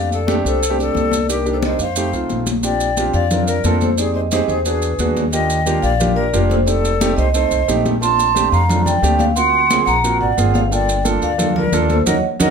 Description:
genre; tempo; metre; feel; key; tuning
Afro-Cuban jazz; 178 BPM; 4/4; straight; Bb major; A4 = 442 Hz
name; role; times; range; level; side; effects
vibraphone with soft mallets; melody; 0.0-12.5 s; Bb4 to C6; -20 LUFS; right 2 dB; none
breathy jazz flute; second line; 0.0-12.5 s; G4 to A5; -23 LUFS; left 5 dB; none
warm concert grand piano; accompaniment; 0.0-12.5 s; A3 to Bb4; -22 LUFS; right 5 dB; none
upright bass; bass; 0.0-12.5 s; F1 to F2; -20 LUFS; left 1 dB; none
congas; percussion; 0.1-12.5 s; none; -22 LUFS; left 2 dB; none
maracas; percussion; 0.1-12.5 s; none; -27 LUFS; right 5 dB; none
room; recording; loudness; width
light reverb; close, detailed microphones; -14 LUFS; side -6 dB against mid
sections
0.0-2.6 A section; 2.6-12.5 B section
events
band accent 12.1-12.5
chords
0.0 F69; 1.3 Cm7; 2.0 F7; 2.6 Bb69; 4.0 Fm9; 4.7 E9; 5.3 Ebmaj9; 6.7 F9; 8.0 Bbmaj9; 9.4 D7alt; 10.7 Gm9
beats
0.28 0.62 0.95 | 1.29 1.63 1.97 2.30 | 2.64 2.98 3.31 3.65 | 3.98 4.32 4.66 5.00 | 5.33 5.67 6.00 6.34 | 6.68 7.01 7.35 7.69 | 8.03 8.36 8.70 9.04 | 9.37 9.71 10.04 10.38 | 10.72 11.05 11.39 11.73 | 12.06 12.40

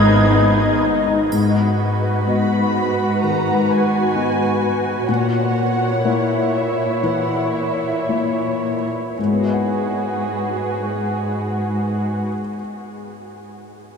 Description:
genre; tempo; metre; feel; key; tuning
cinematic, emotional film score for orchestra; 53-65 BPM; 4/4; rubato; G# minor; A4 = 440 Hz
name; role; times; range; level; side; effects
muted symphonic violin section; melody; 0.0-12.3 s; B4 to G#6; -28 LUFS; right 1 dB; none
clear oboe; second line; 0.0-0.8 s; G#4; -30 LUFS; left 1 dB; none
dark clarinet; second line; 0.0-0.8 s; G#4; -33 LUFS; right 2 dB; none
muted symphonic violin section; second line; 0.0-12.3 s; D#4 to D#5; -22 LUFS; right 1 dB; none
silver concert flute; second line; 0.0-0.8 s; B5; -32 LUFS; right 3 dB; none
clear grand piano; accompaniment; 0.0-14.0 s; G#2 to F#5; -22 LUFS; left 4 dB; none
muted symphonic viola section; accompaniment; 0.0-1.1 s; B3 to D#4; -28 LUFS; right 2 dB; none
mellow French horn section; sustained chords; 0.0-0.8 s; none; barely audible; none; none
muted symphonic cello section; bass; 0.0-12.3 s; G#2 to A#2; -23 LUFS; equal; none
muted symphonic double bass section; bass; 0.0-1.1 s; G#1; -22 LUFS; right 1 dB; none
timpani; percussion; 0.0-0.8 s; none; barely audible; none; none
triangle; percussion; 1.3-3.2 s; none; -40 LUFS; right 4 dB; none
room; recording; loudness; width
wet huge ambient reverb, RT60 8.3 s; in a vast, echoing space; -17 LUFS; side -6 dB against mid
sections
0.0-1.3 A section; 1.3-9.2 B section; 9.2-13.5 C section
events
slowing down 0.0-9.2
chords
0.0 G#m; 1.3 G#m7; 5.1 A#dim; 9.2 G#m7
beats
0.34 | 1.32 2.27 3.22 4.15 | 5.08 6.04 7.04 8.08 | 9.18 10.26 11.34 12.42

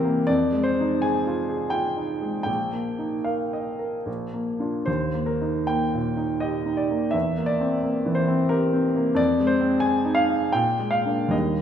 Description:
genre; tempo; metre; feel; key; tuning
classical, romantic character piece for solo piano; 68-92 BPM; 3/4; rubato; unclear; A4 = 441 Hz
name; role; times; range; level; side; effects
warm grand piano; solo; 0.0-11.6 s; Bb1 to Ab5; -21 LUFS; equal; none
room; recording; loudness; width
wet recital hall reverb, RT60 1.4 s; recorded in a church or concert hall; -21 LUFS; side -9 dB against mid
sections
0.0-11.6 A section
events
none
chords
0.3 Fm7; 2.5 Bbsus4; 4.1 Bb; 4.9 Eb; 7.1 C7/E; 9.2 Fm7; 10.5 Bb7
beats
| 0.27 1.03 1.73 | 2.47 3.27 4.07 | 4.87 5.70 6.43 | 7.14 7.83 8.50 | 9.18 9.83 10.54 | 11.33

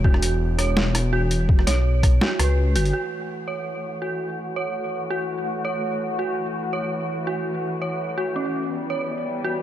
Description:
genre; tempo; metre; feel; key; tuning
half-time drum and bass; 166 BPM; 4/4; swing 54% on 16ths, half-time; F# phrygian; A4 = 440 Hz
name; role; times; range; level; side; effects
dark detuned synth bell; arpeggios; 0.0-9.6 s; C#4 to C#5; -26 LUFS; right 2 dB; chorus, tremolo, low-pass filter, tape echo
dark detuned saw bass; bass; 0.0-2.9 s; E1 to C#2; -20 LUFS; equal; none
electronic kick drum; drums; 0.0-2.1 s; none; -16 LUFS; equal; overdrive
boom bap sampler-style drum kit; drums; 0.1-2.9 s; hi-hat, rim click, snare drum; -25 LUFS; equal; overdrive
dark studio string section; sustained chords; 2.9-9.6 s; E3 to F#4; -29 LUFS; left 2 dB; sidechain pumping, low-pass filter
room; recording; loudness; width
light reverb, digital ambience; none; -21 LUFS; side -12 dB against mid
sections
0.0-2.9 A section; 2.9-9.6 B section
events
kick drops out 2.6-2.9; filter sweep on string section 2.9-9.6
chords
0.0 E5; 2.9 F#m7; 8.7 Em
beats
| 0.05 0.41 0.77 1.13 | 1.49 1.85 2.21 2.58 | 2.94 3.30 3.66 4.02 | 4.38 4.75 5.11 5.47 | 5.83 6.19 6.55 6.91 | 7.28 7.64 8.00 8.36 | 8.72 9.08 9.44

